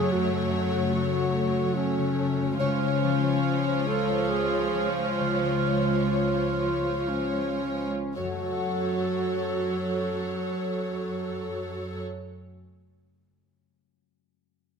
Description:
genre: cinematic, emotional film score for orchestra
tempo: 55-73 BPM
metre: 3/4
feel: rubato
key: F# harmonic minor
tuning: A4 = 439 Hz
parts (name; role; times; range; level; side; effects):
- dark duduk; melody; 0.0-12.0 s; C#4 to A4; -30 LUFS; equal; none
- dark studio violin section; second line; 0.0-12.0 s; C#5; -32 LUFS; left 2 dB; none
- warm studio viola section; accompaniment; 0.0-12.0 s; E#3 to A4; -30 LUFS; right 4 dB; none
- concert harp; arpeggios; 0.0-12.9 s; F#2 to C#6; -32 LUFS; left 10 dB; none
- dark studio cello section; bass; 0.0-12.0 s; C#2 to F#2; -32 LUFS; right 4 dB; none
room: moderate scoring stage reverb, RT60 1.7 s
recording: close, detailed microphones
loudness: -24 LUFS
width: side -6 dB against mid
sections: 0.0-8.2 A section; 8.2-11.2 B section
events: slowing down 1.4-8.2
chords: 0.0 F#m; 2.6 C#; 8.2 F#m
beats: | 0.11 0.94 1.77 | 2.60 3.44 4.30 | 5.19 6.10 7.10 | 8.16 9.18 10.21

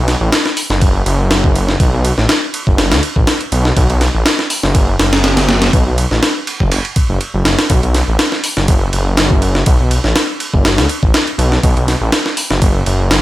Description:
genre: breakbeat, breaks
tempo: 122 BPM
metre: 4/4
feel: swing 54% on 16ths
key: B minor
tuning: A4 = 444 Hz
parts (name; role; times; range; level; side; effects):
- detuned saw bass; bass; 0.0-13.2 s; F#1 to D2; -14 LUFS; equal; none
- breakbeat sampler-style drum kit; drums; 0.1-13.2 s; hi-hat, kick drum, ride cymbal, snare drum; -13 LUFS; equal; studio reverb
room: digital ambience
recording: none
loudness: -11 LUFS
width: side -16 dB against mid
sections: 0.0-13.2 A section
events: none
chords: none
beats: 0.32 0.81 1.31 | 1.80 2.29 2.78 3.27 | 3.77 4.26 4.75 5.24 | 5.73 6.22 6.71 7.21 | 7.70 8.19 8.68 9.17 | 9.67 10.16 10.65 11.14 | 11.63 12.12 12.62 13.11

